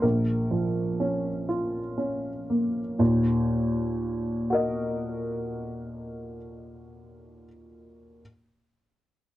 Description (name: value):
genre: neoclassical minimalist piano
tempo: 40 BPM (dotted quarters)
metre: 6/8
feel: rubato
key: Eb minor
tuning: A4 = 440 Hz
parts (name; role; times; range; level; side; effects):
- warm upright piano; solo; 0.0-8.2 s; Bb1 to Eb5; -25 LUFS; equal; none
room: moderate studio ambience, RT60 0.5 s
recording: worn, warbling old tape, cassette tape, warbly pitch drift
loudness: -25 LUFS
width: side -15 dB against mid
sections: 0.0-3.0 A section; 3.0-6.0 B section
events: slowing down 0.0-3.0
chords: 0.0 Bbm; 3.0 Ebm